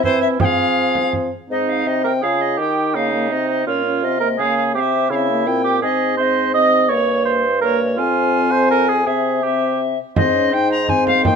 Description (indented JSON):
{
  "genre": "classical, renaissance-style consort dance",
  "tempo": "166 BPM",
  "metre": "3/4",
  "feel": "straight",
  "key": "unclear",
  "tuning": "A4 = 440 Hz",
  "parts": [
    { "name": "alto recorder", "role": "melody", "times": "0.0-11.4 s", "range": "C5 to Bb5", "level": "-21 LUFS", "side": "left 5 dB", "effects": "none" },
    { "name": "mellow cor anglais", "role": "second line", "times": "0.0-11.4 s", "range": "Eb4 to Eb5", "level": "-20 LUFS", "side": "right 7 dB", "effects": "none" },
    { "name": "dark trombone", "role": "accompaniment", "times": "0.0-11.4 s", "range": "Bb3 to F4", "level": "-24 LUFS", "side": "left 3 dB", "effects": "none" },
    { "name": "dark bassoon", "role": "bass", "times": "0.0-11.4 s", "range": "F2 to F3", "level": "-22 LUFS", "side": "equal", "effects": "none" },
    { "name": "frame drum", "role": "percussion", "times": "0.0-1.3, 10.2-11.4 s", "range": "none", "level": "-22 LUFS", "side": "right 4 dB", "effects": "none" }
  ],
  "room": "light reverb",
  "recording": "none",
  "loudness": "-15 LUFS",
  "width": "side -6 dB against mid",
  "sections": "0.0-1.5 A section; 1.5-10.2 B section; 10.2-11.4 B section",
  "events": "none",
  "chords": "0.4 Fm; 1.5 Ab; 2.6 Eb; 3.7 Bbm; 5.8 Ab; 6.9 Gdim; 8.0 Fm; 9.1 C; 10.2 Ab",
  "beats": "0.04 | 0.41 0.77 1.14 | 1.50 1.87 2.23 | 2.59 2.95 3.31 | 3.67 4.03 4.39 | 4.75 5.11 5.47 | 5.83 6.18 6.54 | 6.90 7.26 7.62 | 7.98 8.34 8.70 | 9.07 9.44 9.80 | 10.17 10.53 10.89 | 11.25"
}